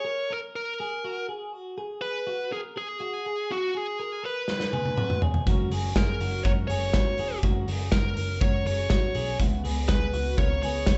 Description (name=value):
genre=jangly indie pop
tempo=122 BPM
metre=4/4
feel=straight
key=unclear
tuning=A4 = 440 Hz
part: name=bluesy overdriven lead guitar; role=melody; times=0.0-11.0 s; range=F#4 to C#5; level=-32 LUFS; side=equal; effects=distortion
part: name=twelve-string electric guitar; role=arpeggios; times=0.0-11.0 s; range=F#4 to A#4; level=-38 LUFS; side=equal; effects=spring reverb
part: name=loose indie drum kit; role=drums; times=4.5-11.0 s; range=hi-hat, kick drum, snare drum, toms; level=-28 LUFS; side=equal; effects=none
part: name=fingerpicked steel-string acoustic guitar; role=accompaniment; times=5.5-11.0 s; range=C#3 to B4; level=-37 LUFS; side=equal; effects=none
part: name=vintage muted picked electric bass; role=bass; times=5.5-11.0 s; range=E1 to D#2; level=-32 LUFS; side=equal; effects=none
room=light reverb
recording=band playing live in one room, nothing above 8.0 kHz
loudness=-27 LUFS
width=mono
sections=0.0-11.0 A section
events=drum fill 4.5-5.5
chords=0.0 F#add9; 9.4 C#m7